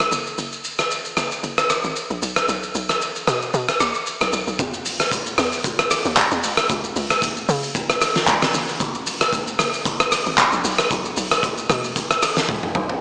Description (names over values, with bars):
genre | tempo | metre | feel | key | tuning
amapiano | 114 BPM | 4/4 | swing 55% on 16ths | unclear | A4 = 442 Hz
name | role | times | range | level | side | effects
tight log drum bass | bass | 0.0-12.9 s | F#1 to C#3 | -26 LUFS | equal | none
oversized low-tuned drum kit | drums | 0.0-13.0 s | handclaps, hi-hat, kick drum, rim click, shaker, snare drum, toms | -18 LUFS | equal | none
room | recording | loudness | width
light reverb | dry, gritty hardware recording, small speaker sound | -18 LUFS | side -27 dB against mid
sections
0.0-4.6 A section; 4.6-13.0 B section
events
drop 4.6-13.0; drum fill 12.5-13.0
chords
none